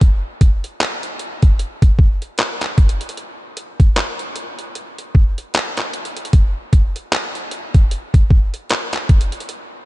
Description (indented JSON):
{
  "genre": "R&B",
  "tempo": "76 BPM",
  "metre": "4/4",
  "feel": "swing 58% on 16ths",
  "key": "none",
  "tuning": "none",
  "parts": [
    { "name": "detuned 8-bit digital drum machine", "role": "drums", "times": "0.0-9.7 s", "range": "handclaps, hi-hat, kick drum", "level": "-15 LUFS", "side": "equal", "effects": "none" }
  ],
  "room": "little or no reverb",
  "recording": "nothing above 10.6 kHz",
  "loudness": "-14 LUFS",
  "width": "side -18 dB against mid",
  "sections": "0.0-9.9 A section",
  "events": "none",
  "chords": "none",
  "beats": "| 0.01 0.80 1.59 2.38 | 3.17 3.96 4.75 5.54 | 6.33 7.12 7.91 8.70 | 9.49"
}